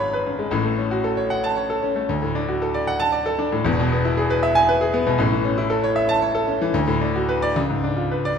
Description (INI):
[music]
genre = classical, virtuoso piano study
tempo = 77 BPM (dotted quarters)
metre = 6/8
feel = rubato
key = F# minor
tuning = A4 = 441 Hz
[part]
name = clear concert grand piano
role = solo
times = 0.0-8.4 s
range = E1 to B5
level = -19 LUFS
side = equal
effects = none
[sound]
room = wet large studio reverb, RT60 1.3 s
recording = none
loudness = -19 LUFS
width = side -7 dB against mid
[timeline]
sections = 0.0-8.4 A section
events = none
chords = 0.0 C#7/G#; 0.5 F#m/A; 2.1 D; 3.6 E; 5.2 A; 6.7 D6; 7.6 C#7b9